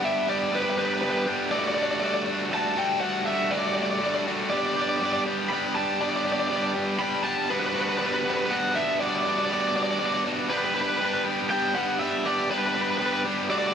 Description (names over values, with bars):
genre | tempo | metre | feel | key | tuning
rock | 120 BPM | 3/4 | straight | G major | A4 = 441 Hz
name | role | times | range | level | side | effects
raw garage guitar | melody | 0.0-13.7 s | B4 to B5 | -26 LUFS | equal | overdrive, analog delay
distorted electric guitar | riff | 0.0-13.7 s | G3 to G4 | -26 LUFS | equal | overdrive
room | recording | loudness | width
moderate huge ambient reverb, RT60 7.3 s | none | -23 LUFS | side -8 dB against mid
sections
0.0-13.7 A section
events
none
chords
0.0 G; 1.5 D/G; 4.5 G; 7.5 Bm/G; 10.5 G